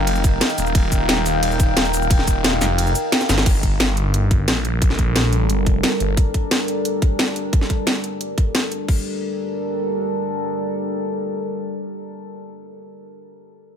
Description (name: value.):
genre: dark technical drum and bass.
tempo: 177 BPM.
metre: 4/4.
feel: straight.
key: G minor.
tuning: A4 = 440 Hz.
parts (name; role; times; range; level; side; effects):
deep dark ambient pad; sustained chords; 0.0-12.4 s; G3 to G5; -24 LUFS; left 1 dB; chorus, built-in reverb, sidechain pumping.
phased detuned saw bass; bass; 0.0-6.2 s; Eb1 to Bb1; -20 LUFS; equal; phaser, tube saturation, sidechain pumping.
drum and bass drum kit; drums; 0.1-9.0 s; crash cymbal, hi-hat, ride cymbal, shaker, snare drum; -21 LUFS; equal; overdrive, studio reverb.
electronic kick drum; drums; 0.2-9.0 s; none; -17 LUFS; equal; studio reverb.
room: little or no reverb.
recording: none.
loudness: -17 LUFS.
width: side -8 dB against mid.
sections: 0.0-3.5 A section; 3.5-8.9 B section; 8.9-11.6 C section.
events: drop 0.0-3.5; kick drops out 2.8-3.5; drum fill 3.2; band accent 3.4.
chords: 0.0 Ebadd9; 3.5 Gm.